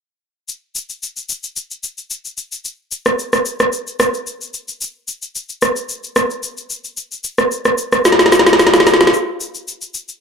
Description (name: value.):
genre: amapiano.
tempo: 111 BPM.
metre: 4/4.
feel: straight.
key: none.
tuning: none.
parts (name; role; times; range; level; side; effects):
electronic shaker, rim click and snare drum; drums; 0.5-10.2 s; none; -14 LUFS; equal; none.
room: moderate digital room reverb, RT60 1.1 s.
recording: dark, warm production.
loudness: -15 LUFS.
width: side -6 dB against mid.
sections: 0.5-9.1 A section; 9.1-10.2 B section.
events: drum fill 8.1-9.1.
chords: none.